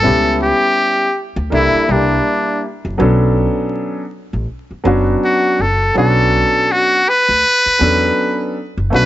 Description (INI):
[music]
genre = hip hop, jazz-hop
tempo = 81 BPM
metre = 4/4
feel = swing 59% on 16ths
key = B minor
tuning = A4 = 442 Hz
[part]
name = trumpet with metal mute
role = melody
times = 0.0-9.1 s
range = D4 to B4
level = -14 LUFS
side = equal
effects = none
[part]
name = warm grand piano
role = accompaniment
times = 0.0-9.1 s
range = F#3 to A4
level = -17 LUFS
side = equal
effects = none
[part]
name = upright bass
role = bass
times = 0.0-9.1 s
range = F#1 to E2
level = -17 LUFS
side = equal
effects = none
[sound]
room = light reverb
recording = vinyl crackle, nothing above 7.7 kHz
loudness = -12 LUFS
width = side -14 dB against mid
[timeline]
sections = 0.0-8.9 A section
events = none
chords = 0.0 C#m7b5; 1.5 C13; 3.0 Bm7